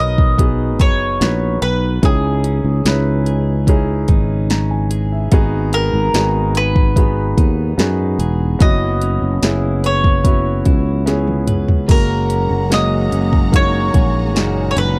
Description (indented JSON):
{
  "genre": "pop ballad",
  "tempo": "73 BPM",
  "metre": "4/4",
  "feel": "straight",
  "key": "unclear",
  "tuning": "A4 = 440 Hz",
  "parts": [
    { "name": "mandolin", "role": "melody", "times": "0.0-15.0 s", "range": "G#4 to D#5", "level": "-23 LUFS", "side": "equal", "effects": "none" },
    { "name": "clear concert grand piano", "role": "accompaniment", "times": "0.0-15.0 s", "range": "G#2 to A#5", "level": "-24 LUFS", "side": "equal", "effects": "none" },
    { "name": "direct-recorded clean electric guitar", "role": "arpeggios", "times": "0.0-15.0 s", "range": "G#2 to B4", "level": "-30 LUFS", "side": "equal", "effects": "none" },
    { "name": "sustaining fretless electric bass", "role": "bass", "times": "0.0-15.0 s", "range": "E1 to F#2", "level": "-20 LUFS", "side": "equal", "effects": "none" },
    { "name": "deep house drum kit", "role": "drums", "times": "0.2-15.0 s", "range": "crash cymbal, hi-hat, kick drum, snare drum, toms", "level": "-17 LUFS", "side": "equal", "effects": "none" },
    { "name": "warm studio string section", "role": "sustained chords", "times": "11.9-15.0 s", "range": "G#4 to A#5", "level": "-33 LUFS", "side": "equal", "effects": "none" }
  ],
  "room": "little or no reverb",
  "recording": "dry, close 1970s-style studio recording",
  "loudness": "-16 LUFS",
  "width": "mono",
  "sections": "0.0-11.9 A section; 11.9-15.0 B section",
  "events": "drum fill 11.1-11.9",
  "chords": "0.0 Bmaj7; 2.0 C#madd9; 5.3 G#m7; 8.6 F#7sus4; 11.9 F#add9"
}